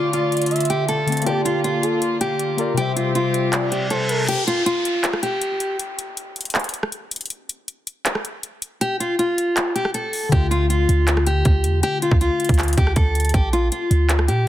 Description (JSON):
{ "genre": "hip hop, trap", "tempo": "159 BPM", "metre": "4/4", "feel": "half-time", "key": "D minor", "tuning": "A4 = 437 Hz", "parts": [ { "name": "fingerpicked steel-string acoustic guitar", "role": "melody", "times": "0.0-5.8, 8.8-14.5 s", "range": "F4 to A4", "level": "-22 LUFS", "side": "left 1 dB", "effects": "tape echo" }, { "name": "gliding portamento lead", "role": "second line", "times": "0.0-4.3 s", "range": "G4 to E5", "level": "-27 LUFS", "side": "right 5 dB", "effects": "chorus, tape echo" }, { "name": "warbly lo-fi synth keys", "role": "accompaniment", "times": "0.0-4.3, 10.3-13.4 s", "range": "C3 to E5", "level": "-26 LUFS", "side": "left 6 dB", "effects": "chorus" }, { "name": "dark studio string section", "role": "sustained chords", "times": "0.0-4.3 s", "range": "D3 to G4", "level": "-28 LUFS", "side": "right 1 dB", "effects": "none" }, { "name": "trap drum kit", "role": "drums", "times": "0.1-14.4 s", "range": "crash cymbal, handclaps, hi-hat, kick drum, rim click", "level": "-22 LUFS", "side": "equal", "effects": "none" }, { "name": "reverse cymbal and downlifter", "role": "sound effects", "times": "3.7-7.3 s", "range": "none", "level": "-29 LUFS", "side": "equal", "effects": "none" }, { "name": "clean 808-style bass", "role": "bass", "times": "10.3-14.5 s", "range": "Bb1 to Bb2", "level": "-19 LUFS", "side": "right 1 dB", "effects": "none" } ], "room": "digital ambience", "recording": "dense, heavily limited modern master", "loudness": "-18 LUFS", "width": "side -13 dB against mid", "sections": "0.0-4.3 A section; 4.3-14.5 B section", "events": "reverse cymbal 3.7-4.3; break 4.3-10.3", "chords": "0.0 Dm; 1.3 Bb; 2.8 C; 4.3 N.C.; 10.3 Dm; 13.3 Bb" }